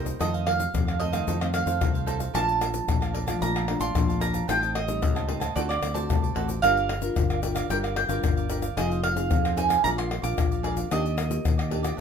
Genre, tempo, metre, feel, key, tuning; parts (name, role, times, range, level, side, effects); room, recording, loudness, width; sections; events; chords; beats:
samba and choro; 112 BPM; 4/4; straight; G minor; A4 = 442 Hz
mandolin; melody; 0.0-11.9 s; D5 to D6; -28 LUFS; right 5 dB
cavaquinho; accompaniment; 0.0-12.0 s; D4 to A5; -34 LUFS; right 8 dB
nylon-string guitar; accompaniment; 0.0-12.0 s; F2 to Bb4; -32 LUFS; left 4 dB
overdriven fingered electric bass; bass; 0.0-11.9 s; F1 to F2; -30 LUFS; right 1 dB
egg shaker, pandeiro, surdo and tamborim; percussion; 0.1-12.0 s; -28 LUFS; left 4 dB
light reverb; minimal, uncompressed stereo recording; -23 LUFS; side -7 dB against mid
0.0-12.0 A section
0.2 F7; 2.3 Bbmaj7; 4.5 Am7b5; 5.6 D7; 6.6 Gm7; 8.8 Fm7; 9.8 Bb7; 10.9 Ebmaj7
| 0.20 0.74 1.28 1.81 | 2.35 2.88 3.42 3.95 | 4.49 5.02 5.56 6.09 | 6.63 7.17 7.70 8.24 | 8.77 9.31 9.84 10.38 | 10.91 11.45 11.99